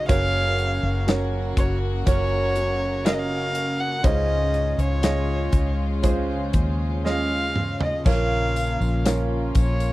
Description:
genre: pop ballad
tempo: 60 BPM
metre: 4/4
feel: straight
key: unclear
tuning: A4 = 439 Hz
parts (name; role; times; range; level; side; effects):
- dark violin; melody; 0.0-9.9 s; Db5 to Gb5; -26 LUFS; left 1 dB; none
- clear upright piano; accompaniment; 0.0-9.9 s; Ab2 to Eb5; -28 LUFS; right 5 dB; none
- warm studio string section; sustained chords; 0.0-9.9 s; Db3 to Gb4; -31 LUFS; left 2 dB; none
- fingerpicked steel-string acoustic guitar; arpeggios; 0.0-9.9 s; Bb2 to C5; -34 LUFS; left 3 dB; none
- vintage muted fingered electric bass; bass; 0.0-9.9 s; Gb1 to Eb2; -25 LUFS; equal; none
- modern studio drum kit; drums; 0.1-9.9 s; crash cymbal, hi-hat, kick drum, snare drum, toms; -22 LUFS; equal; none
- tambourine; percussion; 8.1-9.9 s; none; -42 LUFS; left 13 dB; none
room: little or no reverb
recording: dry, close 1970s-style studio recording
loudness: -20 LUFS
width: side -17 dB against mid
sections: 0.0-9.9 A section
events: drum fill 7.0-8.1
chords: 0.1 Gb; 4.0 Dbmaj7; 8.1 Bbm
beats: | 0.09 1.08 2.06 3.05 | 4.04 5.03 6.03 7.05 | 8.06 9.06

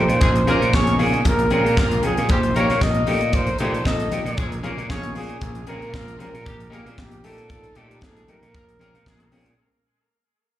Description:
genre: disco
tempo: 115 BPM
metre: 4/4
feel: straight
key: Bb dorian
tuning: A4 = 440 Hz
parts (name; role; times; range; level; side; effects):
- breathy flugelhorn; melody; 0.0-9.3 s; G4 to Eb5; -25 LUFS; equal; slapback echo
- overdriven clav; accompaniment; 0.0-9.5 s; Bb2 to Ab4; -29 LUFS; left 3 dB; slapback echo
- clear studio string section; sustained chords; 0.0-9.6 s; C3 to F4; -30 LUFS; right 2 dB; none
- gritty slap bass; bass; 0.0-9.5 s; Bb1 to Bb2; -23 LUFS; right 1 dB; overdrive
- tight funk drum kit; drums; 0.1-9.6 s; hi-hat, kick drum, snare drum; -23 LUFS; equal; none
- warm horn section; stabs; 0.2-9.3 s; G3 to Db5; -29 LUFS; equal; slapback echo, tape echo
- congas; percussion; 0.5-9.4 s; none; -31 LUFS; left 2 dB; slapback echo
room: small room ambience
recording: live gig heard through the venue's PA, club reverb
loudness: -17 LUFS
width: side -13 dB against mid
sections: 0.0-9.6 A section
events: fade-out 0.0-9.6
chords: 0.2 Eb7sus4/Bb; 1.2 Bbm7; 2.3 Cm7/Bb; 3.1 F7/Bb; 4.4 Eb7sus4/Bb; 5.4 Bbm7; 6.5 Cm7/Bb; 7.2 F7/Bb; 8.5 Bbm9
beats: 0.20 0.72 | 1.25 1.77 2.29 2.81 | 3.33 3.85 4.37 4.89 | 5.41 5.93 6.46 6.98 | 7.50 8.02 8.54 9.06

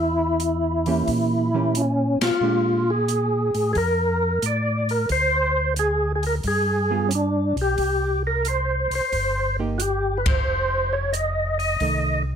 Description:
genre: soul jazz organ trio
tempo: 89 BPM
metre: 4/4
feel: swing 69% on 8ths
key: Bb mixolydian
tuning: A4 = 440 Hz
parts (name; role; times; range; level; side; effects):
- percussive tonewheel organ; melody; 0.0-12.2 s; C#4 to Eb5; -22 LUFS; equal; slow rotary speaker, overdrive, chorus vibrato, plate reverb
- mellow tonewheel organ; bass; 0.0-12.4 s; F1 to Bb2; -25 LUFS; equal; chorus vibrato, slow rotary speaker
- open jazz drum kit; drums; 0.4-12.0 s; hi-hat, kick drum, ride cymbal, snare drum; -28 LUFS; equal; none
- hollow-body jazz guitar; accompaniment; 0.9-2.8, 6.9-12.2 s; Eb3 to Ab4; -26 LUFS; right 6 dB; none
room: light reverb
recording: none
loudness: -20 LUFS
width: side -8 dB against mid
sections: 0.0-12.4 A section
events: band accent 2.1-2.4, 10.1-10.5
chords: 0.0 Edim7; 2.4 Bb6; 5.1 Bb9/D (rootless); 6.4 G7b9; 7.8 C5; 10.5 F7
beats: 0.41 1.08 1.75 | 2.42 3.09 3.76 4.43 | 5.10 5.78 6.45 7.12 | 7.79 8.46 9.13 9.80 | 10.47 11.14 11.81

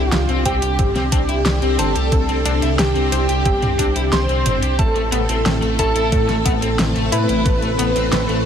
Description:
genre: synthwave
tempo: 90 BPM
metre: 4/4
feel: straight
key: C major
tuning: A4 = 444 Hz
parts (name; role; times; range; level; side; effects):
- wide unison lead; melody; 0.0-8.5 s; G4 to C5; -22 LUFS; equal; ping-pong delay, shimmer reverb
- soft synth bell; second line; 0.0-8.4 s; G5 to C6; -30 LUFS; right 2 dB; chorus, tape echo, shimmer reverb
- string machine, full ensemble; sustained chords; 0.0-8.5 s; A3 to A4; -24 LUFS; equal; ensemble chorus, sidechain pumping, shimmer reverb
- chorused synth bass; bass; 0.0-8.4 s; G1 to A2; -21 LUFS; equal; none
- impact; sound effects; 0.0-2.1 s; none; barely audible; none; none
- analog pluck; arpeggios; 0.1-8.3 s; A3 to C5; -28 LUFS; left 4 dB; chorus, tape echo, shimmer reverb
- pop drum kit; drums; 0.1-8.4 s; hi-hat, snare drum, toms; -22 LUFS; equal; overdrive
- raw garage guitar; riff; 0.3-8.4 s; A3 to G4; -26 LUFS; left 1 dB; overdrive, analog chorus, tape echo, shimmer reverb
- electronic kick drum; drums; 0.5-7.6 s; none; -20 LUFS; equal; overdrive
room: light reverb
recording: none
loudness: -15 LUFS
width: side -8 dB against mid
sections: 0.0-8.5 A section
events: impact 0.0-2.1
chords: 0.0 Csus2; 4.8 Amadd9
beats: 0.12 0.79 1.46 | 2.12 2.79 3.46 4.12 | 4.79 5.46 6.12 6.79 | 7.46 8.12

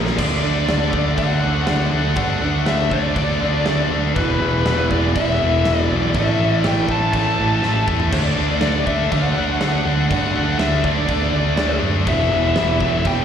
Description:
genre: hard rock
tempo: 121 BPM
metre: 4/4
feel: straight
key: unclear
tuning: A4 = 440 Hz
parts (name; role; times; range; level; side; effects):
- heavy high-gain guitar; riff; 0.0-13.2 s; E2 to D4; -23 LUFS; left 11 dB; distortion
- overdriven semi-hollow guitar; riff; 0.0-13.2 s; E2 to D4; -24 LUFS; right 8 dB; slapback echo
- picked electric bass; bass; 0.0-13.2 s; E1 to G2; -21 LUFS; equal; none
- big rock drum kit; drums; 0.1-13.2 s; crash cymbal, kick drum, snare drum, toms; -24 LUFS; equal; none
- bluesy overdriven lead guitar; melody; 0.2-13.2 s; B4 to A5; -22 LUFS; left 1 dB; distortion, slapback echo
- scooped high-gain guitar; riff; 8.1-13.2 s; E2 to D4; -29 LUFS; right 1 dB; distortion, slapback echo
room: studio ambience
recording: live gig heard through the venue's PA, recital hall reverb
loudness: -16 LUFS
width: side -8 dB against mid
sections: 0.2-13.2 A section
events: drum fill 0.0, 7.6-8.1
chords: 0.2 D; 4.2 E5; 6.1 A5; 8.1 D; 12.1 E5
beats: | 0.19 0.69 1.18 1.68 | 2.17 2.67 3.17 3.66 | 4.16 4.66 5.15 5.65 | 6.14 6.64 7.13 7.62 | 8.12 8.61 9.11 9.60 | 10.09 10.59 11.08 11.57 | 12.06 12.56 13.05

